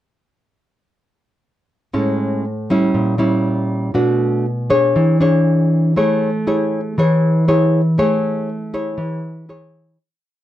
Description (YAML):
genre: bossa nova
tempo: 119 BPM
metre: 4/4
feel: straight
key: A major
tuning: A4 = 435 Hz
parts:
  - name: nylon-string guitar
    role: solo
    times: 1.9-10.0 s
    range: A2 to C#5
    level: -15 LUFS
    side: equal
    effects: none
room: little or no reverb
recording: dry, close 1970s-style studio recording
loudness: -15 LUFS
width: side -13 dB against mid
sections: 1.9-10.0 A section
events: fade-out 8.0-10.0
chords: 1.9 Amaj7; 3.0 A#dim7; 4.0 Bm7; 5.0 E6; 6.0 Amaj7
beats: | 1.95 2.45 2.95 3.46 | 3.96 4.46 4.96 5.47 | 5.97 6.47 6.98 7.48 | 7.98 8.48 8.99 9.49